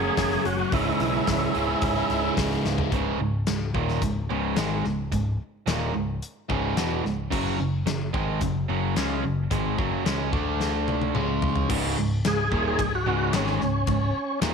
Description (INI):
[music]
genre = classic rock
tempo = 109 BPM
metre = 4/4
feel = straight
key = C# minor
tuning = A4 = 440 Hz
[part]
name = overdriven tonewheel organ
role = melody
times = 0.0-2.3, 12.3-14.4 s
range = C#4 to G#4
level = -27 LUFS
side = equal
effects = slow rotary speaker, chorus vibrato
[part]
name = octave-fuzz lead guitar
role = second line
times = 0.0-2.3 s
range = C#4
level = -34 LUFS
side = right 12 dB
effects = distortion
[part]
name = biting overdriven guitar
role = riff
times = 0.0-14.5 s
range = C#2 to D4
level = -28 LUFS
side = right 12 dB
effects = none
[part]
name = overdriven semi-hollow guitar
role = riff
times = 0.0-14.5 s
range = C#2 to F#4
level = -29 LUFS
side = left 9 dB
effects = phaser
[part]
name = modern bright picked electric bass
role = bass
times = 0.0-14.5 s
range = C#1 to D2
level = -30 LUFS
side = equal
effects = none
[part]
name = gated 80s drum kit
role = drums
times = 0.2-14.5 s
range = crash cymbal, hi-hat, kick drum, ride cymbal, snare drum, toms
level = -29 LUFS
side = left 3 dB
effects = none
[sound]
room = light reverb, studio reverb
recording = 1960s-style stereo with parts hard left and right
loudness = -23 LUFS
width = side -6 dB against mid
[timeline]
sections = 0.0-2.9 A section; 2.9-11.7 B section; 11.7-14.5 C section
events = drum fill 2.6, 10.6-11.7; tonewheel organ solo 11.7-14.5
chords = 0.0 F#m; 0.7 C#m; 7.3 F#5; 10.3 D5; 11.1 C#5